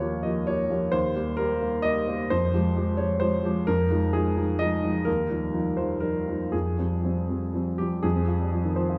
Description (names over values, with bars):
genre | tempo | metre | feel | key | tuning
neoclassical minimalist piano | 117-135 BPM | 3/4 | rubato | F minor | A4 = 440 Hz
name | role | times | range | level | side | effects
warm grand piano | solo | 0.0-9.0 s | Eb2 to Eb5 | -26 LUFS | equal | none
room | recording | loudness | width
wet recital hall reverb, RT60 1.4 s | recorded in a church or concert hall | -26 LUFS | mono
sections
0.0-8.0 A section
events
none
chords
0.0 Ebadd9; 0.9 Cm7/Eb; 2.3 Fmadd9; 3.7 Fm7; 5.1 Ebadd9; 6.5 Fmadd9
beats
0.00 0.47 | 0.93 1.39 1.85 | 2.31 2.76 3.21 | 3.67 4.13 4.60 | 5.07 5.53 6.02 | 6.52 7.03 7.54 | 8.04 8.53